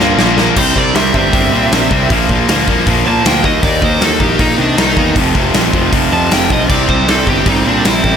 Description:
punk rock; 157 BPM; 4/4; straight; A4 = 438 Hz
distorted electric guitar; riff; 0.0-8.2 s; F2 to Eb4; -16 LUFS; left 13 dB; overdrive
distorted electric guitar; riff; 0.0-8.2 s; F2 to Eb4; -17 LUFS; right 12 dB; distortion
sludgy distorted guitar; riff; 0.0-0.6 s; Bb2 to Bb3; -21 LUFS; left 1 dB
fuzz picked electric bass; bass; 0.0-8.2 s; F1 to C3; -18 LUFS; equal; overdrive
big rock drum kit; drums; 0.0-8.1 s; crash cymbal, hi-hat, kick drum, snare drum; -15 LUFS; left 1 dB
biting overdriven guitar; melody; 0.6-8.2 s; D4 to A5; -17 LUFS; right 3 dB
little or no reverb; -10 LUFS; side -8 dB against mid
0.6-8.2 A section
drum fill 0.0-0.6; overdriven electric guitar solo 0.6-8.2
0.0 Bb5; 0.6 C; 2.1 Bb; 3.4 Eb5; 5.2 F5; 6.7 C5
0.19 | 0.57 0.95 1.33 1.72 | 2.10 2.48 2.87 3.25 | 3.63 4.01 4.40 4.78 | 5.16 5.54 5.93 6.31 | 6.70 7.08 7.46 7.85

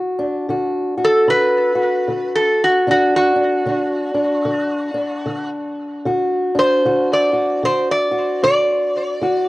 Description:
acoustic country blues, solo or duo; 76 BPM; 4/4; swing 60% on 8ths; D major; A4 = 437 Hz
fingerpicked old ladder-braced acoustic guitar; accompaniment; 0.0-9.5 s; D3 to F#4; -20 LUFS; left 1 dB; cassette tape
metal-body resonator slide guitar; melody; 1.0-9.5 s; F#4 to D5; -16 LUFS; equal; cassette tape, tape echo
light reverb, studio ambience; home recording on cassette; -15 LUFS; side -19 dB against mid
0.0-9.5 A section
resonator guitar played with a steel bar solo 0.0-9.5
0.0 D
0.52 1.31 2.10 | 2.89 3.69 4.48 5.27 | 6.06 6.85 7.64 8.43 | 9.22

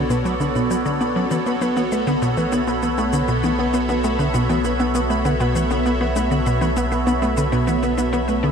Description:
ambient, sequencer-driven space music; 99 BPM; 4/4; straight; B minor; A4 = 440 Hz
evolving wavetable pad; sustained chords; 0.0-8.5 s; B3 to E5; -22 LUFS; right 1 dB; phaser, built-in reverb
wide unison pluck; arpeggios; 0.0-8.5 s; B3 to B4; -26 LUFS; moving between left 6 dB and right 1 dB; auto-pan, cassette tape, tape echo
tight sequencer bass; riff; 0.0-8.5 s; B2 to B3; -22 LUFS; equal; tape echo
warm sub bass; bass; 0.0-8.5 s; B1; -27 LUFS; equal; tube saturation
pulsing gated texture; texture; 0.0-8.5 s; B5; -32 LUFS; right 7 dB; chorus, built-in reverb
bongos and cabasa; percussion; 0.1-8.5 s; -36 LUFS; left 6 dB; overdrive, tape echo
wet huge ambient reverb, RT60 7.6 s; cassette tape; -18 LUFS; side -6 dB against mid
0.0-8.5 A section
0.0 Bm7
0.10 0.71 | 1.31 1.92 2.52 3.13 | 3.74 4.34 4.95 5.55 | 6.16 6.77 7.37 7.98

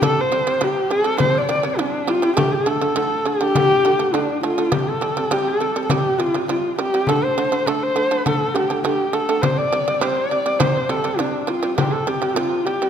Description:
mongolian traditional, Mongolian folk; 102 BPM; 4/4; straight; A4 = 440 Hz
dark horsehead fiddle; melody; 0.0-12.9 s; D4 to D5; -19 LUFS; left 1 dB
shamisen; arpeggios; 0.0-12.9 s; C3 to A3; -23 LUFS; right 4 dB
frame drum; percussion; 0.0-12.7 s; -25 LUFS; left 3 dB
moderate concert hall reverb, RT60 2.0 s; -17 LUFS; side -8 dB against mid
0.0-12.9 A section
0.0 C5; 2.4 D5; 4.7 C5; 7.1 D5; 9.4 C5
| 0.02 0.61 1.20 1.78 | 2.37 2.96 3.55 4.14 | 4.72 5.31 5.90 6.49 | 7.08 7.67 8.25 8.84 | 9.43 10.02 10.61 11.20 | 11.78 12.37

